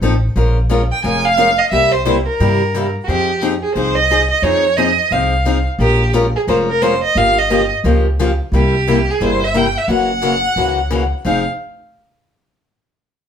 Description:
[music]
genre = acoustic string swing (jazz manouche)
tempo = 176 BPM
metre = 4/4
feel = swing 62% on 8ths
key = F minor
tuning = A4 = 440 Hz
[part]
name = picked steel-string acoustic guitar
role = accompaniment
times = 0.0-11.4 s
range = C3 to Bb4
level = -18 LUFS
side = left 3 dB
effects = none
[part]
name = upright bass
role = bass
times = 0.0-11.4 s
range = F1 to G2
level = -18 LUFS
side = equal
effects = none
[part]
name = rich violin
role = melody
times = 0.9-11.5 s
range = Gb4 to Ab5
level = -16 LUFS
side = right 2 dB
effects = none
[sound]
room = moderate studio reverb, RT60 0.7 s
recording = band playing live in one room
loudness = -13 LUFS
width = side -8 dB against mid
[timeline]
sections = 0.0-5.8 A section; 5.8-11.3 B section; 11.3-12.6 C section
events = none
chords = 0.4 Bbm7; 1.7 C7; 3.1 Fm7; 5.8 Bbm7; 7.2 Gm7b5; 8.5 C7; 9.9 Gb7; 11.3 Fm7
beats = 0.01 | 0.35 0.69 1.03 1.37 | 1.71 2.05 2.39 2.73 | 3.07 3.41 3.75 4.09 | 4.43 4.78 5.12 5.46 | 5.80 6.14 6.48 6.82 | 7.16 7.50 7.84 8.18 | 8.52 8.86 9.21 9.55 | 9.89 10.23 10.57 10.91 | 11.25

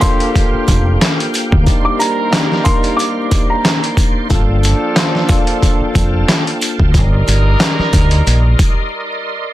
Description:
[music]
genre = hip hop, boom-bap hip-hop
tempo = 91 BPM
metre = 4/4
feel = swing 56% on 16ths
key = unclear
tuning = A4 = 440 Hz
[part]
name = dark upright piano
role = melody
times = 0.0-4.3 s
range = Bb5 to D6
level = -20 LUFS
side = right 2 dB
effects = high-pass filter, low-pass filter
[part]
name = tine electric piano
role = accompaniment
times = 0.0-7.0 s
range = A3 to C5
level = -20 LUFS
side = left 2 dB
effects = medium stereo tremolo, high-pass filter, low-pass filter
[part]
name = overdriven tonewheel organ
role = sustained chords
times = 0.0-9.5 s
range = Bb3 to C6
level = -24 LUFS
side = right 1 dB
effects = chorus vibrato, slow rotary speaker, high-pass filter, low-pass filter
[part]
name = warm horn section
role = stabs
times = 0.0-8.9 s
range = D3 to Bb4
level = -22 LUFS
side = right 2 dB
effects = high-pass filter, low-pass filter, ping-pong delay
[part]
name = dusty soul sampler-style drum kit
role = drums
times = 0.0-8.8 s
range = handclaps, hi-hat, kick drum, snare drum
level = -14 LUFS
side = equal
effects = overdrive
[part]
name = sleigh bells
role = percussion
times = 0.0-8.8 s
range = none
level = -28 LUFS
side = right 5 dB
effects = none
[part]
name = deep dub fingered electric bass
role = bass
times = 0.5-8.5 s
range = F1 to D2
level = -13 LUFS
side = equal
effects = none
[sound]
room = light reverb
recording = dense, heavily limited modern master, vinyl crackle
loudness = -11 LUFS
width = side -15 dB against mid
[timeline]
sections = 0.0-9.5 A section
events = break 8.9-9.5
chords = 0.0 Gm9; 1.7 Cm9/G; 4.3 Gm9; 6.9 Cm9/G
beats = 0.35 1.01 | 1.67 2.33 2.99 3.65 | 4.30 4.96 5.62 6.28 | 6.94 7.60 8.26 8.92

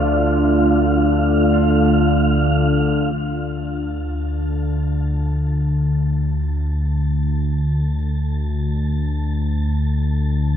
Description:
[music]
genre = dark ambient drone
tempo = free time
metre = none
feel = none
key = D minor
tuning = A4 = 440 Hz
[part]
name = sweeping resonant pad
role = sustained chords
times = 0.0-3.2 s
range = A3 to D5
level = -21 LUFS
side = right 1 dB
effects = chorus
[part]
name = analog drone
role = drone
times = 0.0-10.6 s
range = D2 to D3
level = -18 LUFS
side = left 1 dB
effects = chorus
[part]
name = wind-like tuned noise texture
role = texture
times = 0.0-10.6 s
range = F5 to A5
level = -28 LUFS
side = right 2 dB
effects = built-in reverb
[part]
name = bright concert grand piano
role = arpeggios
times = 1.5-8.0 s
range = F4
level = -41 LUFS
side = left 1 dB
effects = none
[sound]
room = wet huge ambient reverb, RT60 7.8 s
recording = none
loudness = -17 LUFS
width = side -9 dB against mid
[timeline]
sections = 0.0-3.1 A section; 3.1-10.6 B section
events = fade-in on synth texture 3.1-10.6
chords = 0.0 Dm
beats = free time

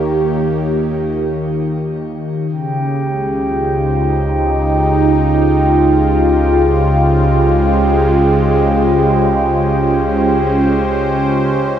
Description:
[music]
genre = ambient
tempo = free time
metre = none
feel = none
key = unclear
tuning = A4 = 440 Hz
[part]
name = warm analog pad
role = sustained chords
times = 0.0-11.8 s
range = Db3 to Db5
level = -14 LUFS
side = equal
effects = chorus, phaser, shimmer reverb
[part]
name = deep rumbling drone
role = bass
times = 0.0-11.8 s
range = Db2 to Eb2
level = -21 LUFS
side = equal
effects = built-in reverb
[part]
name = glass harmonica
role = texture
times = 2.5-11.8 s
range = G4 to G5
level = -19 LUFS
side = right 2 dB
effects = shimmer reverb
[sound]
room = wet huge ambient reverb, RT60 8.1 s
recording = cassette tape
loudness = -12 LUFS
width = side -9 dB against mid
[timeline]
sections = 0.0-11.8 A section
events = fade-in on synth drone 0.0-11.8; filter sweep on analog synth pad 0.0-11.8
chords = 0.0 Eb9; 2.5 Dbmaj9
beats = free time

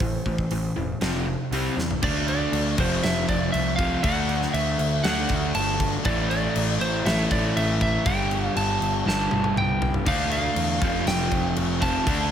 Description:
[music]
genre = hard rock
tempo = 120 BPM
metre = 4/4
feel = straight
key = unclear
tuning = A4 = 441 Hz
[part]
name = lightly driven lead guitar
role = melody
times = 0.0-12.3 s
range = C5 to A5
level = -28 LUFS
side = right 3 dB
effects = none
[part]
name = overdriven semi-hollow guitar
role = riff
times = 0.0-12.3 s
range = F2 to D4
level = -26 LUFS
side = left 1 dB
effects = none
[part]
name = fuzz picked electric bass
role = bass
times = 0.0-12.3 s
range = E1 to E2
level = -28 LUFS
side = equal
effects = overdrive
[part]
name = huge arena drum kit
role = drums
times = 0.0-12.2 s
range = crash cymbal, hi-hat, kick drum, snare drum, toms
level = -27 LUFS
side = left 1 dB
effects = none
[sound]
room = light reverb, studio reverb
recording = none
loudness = -21 LUFS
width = side -9 dB against mid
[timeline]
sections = 0.0-2.0 A section; 2.0-12.3 B section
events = drum fill 1.8, 9.1-10.1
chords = 0.0 Am; 1.0 F5; 1.5 C5; 2.0 D5; 2.8 F5; 4.0 D; 6.0 A5; 8.1 G5; 10.1 Dm; 10.8 F5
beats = | 0.01 0.51 1.02 1.52 | 2.02 2.53 3.03 3.54 | 4.04 4.54 5.04 5.54 | 6.05 6.55 7.05 7.55 | 8.05 8.56 9.06 9.56 | 10.06 10.56 11.06 11.56 | 12.07

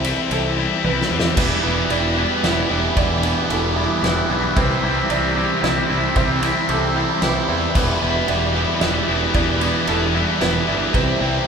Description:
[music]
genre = post-rock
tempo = 113 BPM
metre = 3/4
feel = straight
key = E minor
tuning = A4 = 440 Hz
[part]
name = warm symphonic string section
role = sustained chords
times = 0.0-11.5 s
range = C4 to B5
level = -32 LUFS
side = right 1 dB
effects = none
[part]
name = felt-muted upright piano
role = arpeggios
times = 0.0-11.5 s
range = A4 to E5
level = -29 LUFS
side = right 5 dB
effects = none
[part]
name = twelve-string electric guitar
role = arpeggios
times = 0.0-11.5 s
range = E2 to E4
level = -28 LUFS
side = left 1 dB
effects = none
[part]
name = biting overdriven guitar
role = riff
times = 0.0-11.5 s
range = C3 to E4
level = -21 LUFS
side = left 6 dB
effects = phaser
[part]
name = fuzz fingered electric bass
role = bass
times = 0.0-11.4 s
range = E1 to E2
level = -25 LUFS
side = equal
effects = overdrive
[part]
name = loose indie drum kit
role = drums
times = 0.0-11.1 s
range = crash cymbal, kick drum, ride cymbal, snare drum, splash cymbal, toms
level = -25 LUFS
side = equal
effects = none
[part]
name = distorted electric guitar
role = riff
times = 1.4-11.5 s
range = C3 to E4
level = -23 LUFS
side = right 8 dB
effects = overdrive
[sound]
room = wet recital hall reverb, RT60 1.6 s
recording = recorded in a church or concert hall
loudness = -16 LUFS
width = side -6 dB against mid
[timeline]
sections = 0.0-11.5 A section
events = drum fill 0.8-1.4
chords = 0.0 Cmaj7; 1.4 Em7; 4.6 Cmaj7; 7.8 Em7; 10.9 Cmaj7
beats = 0.31 0.84 | 1.38 1.91 2.44 | 2.97 3.50 4.03 | 4.57 5.10 5.63 | 6.16 6.69 7.22 | 7.75 8.29 8.82 | 9.35 9.88 10.41 | 10.94

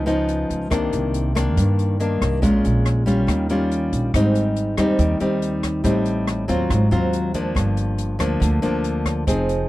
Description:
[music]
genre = bossa nova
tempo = 140 BPM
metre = 4/4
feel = straight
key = unclear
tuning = A4 = 443 Hz
[part]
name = nylon-string guitar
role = accompaniment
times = 0.0-9.7 s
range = G2 to Ab4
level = -20 LUFS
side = left 1 dB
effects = none
[part]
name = upright bass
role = bass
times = 0.0-9.7 s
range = F1 to G2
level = -22 LUFS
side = right 1 dB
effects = none
[part]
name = open jazz drum kit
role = drums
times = 0.1-9.6 s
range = hi-hat, kick drum, rim click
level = -26 LUFS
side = equal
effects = none
[sound]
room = little or no reverb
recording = dry, close 1970s-style studio recording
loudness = -18 LUFS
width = side -17 dB against mid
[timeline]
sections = 0.0-4.1 A section; 4.1-9.7 A section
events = none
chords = 0.0 Db9; 0.7 Cm9; 2.4 Bbm7; 3.3 Eb9; 4.1 Abmaj7; 5.8 Am7b5; 6.7 Ab13; 7.6 Gm7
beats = 0.29 | 0.72 1.15 1.58 2.00 | 2.43 2.86 3.29 3.71 | 4.14 4.57 4.99 5.42 | 5.85 6.28 6.70 7.13 | 7.56 7.99 8.41 8.84 | 9.27

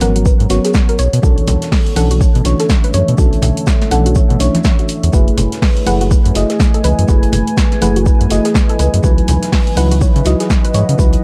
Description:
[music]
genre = deep house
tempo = 123 BPM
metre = 4/4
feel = swing 60% on 16ths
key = unclear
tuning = A4 = 440 Hz
[part]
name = soft round pluck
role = arpeggios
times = 0.0-11.1 s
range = F#4 to F#5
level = -25 LUFS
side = equal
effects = analog chorus, cassette tape, sidechain pumping, analog delay
[part]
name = mellow FM electric piano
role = stabs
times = 0.0-11.2 s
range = E3 to D#5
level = -21 LUFS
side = equal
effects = chorus, sidechain pumping, analog delay
[part]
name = round analog bass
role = bass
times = 0.0-11.2 s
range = F#1 to C#3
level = -17 LUFS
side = equal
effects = tube saturation, sidechain pumping
[part]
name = deep house drum kit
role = drums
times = 0.0-11.2 s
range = hi-hat, snare drum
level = -23 LUFS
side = equal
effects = overdrive
[part]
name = deep reggae drum kit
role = drums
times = 0.0-11.2 s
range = hi-hat, shaker, snare drum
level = -34 LUFS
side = equal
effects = sidechain pumping on hats, high-pass filter on hats, high-pass filter on snare, sidechain pumping on perc, high-pass filter on perc, high-pass filter on room
[part]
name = congas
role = percussion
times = 0.0-10.9 s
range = none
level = -24 LUFS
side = equal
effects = none
[part]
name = deep dark ambient pad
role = texture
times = 0.0-11.2 s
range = D3 to G#5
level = -26 LUFS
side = equal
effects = chorus, built-in reverb, sidechain pumping
[part]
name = electronic kick drum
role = drums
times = 0.3-11.1 s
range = none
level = -15 LUFS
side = equal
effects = overdrive
[sound]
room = small room ambience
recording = vinyl crackle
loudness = -13 LUFS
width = mono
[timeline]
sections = 0.0-11.2 A section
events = none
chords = 0.0 G#m11; 1.0 Bm11; 5.1 F#m11; 9.0 C#m11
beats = 0.26 0.74 | 1.23 1.72 2.21 2.69 | 3.18 3.67 4.16 4.65 | 5.13 5.62 6.11 6.60 | 7.09 7.57 8.06 8.55 | 9.04 9.53 10.01 10.50 | 10.99

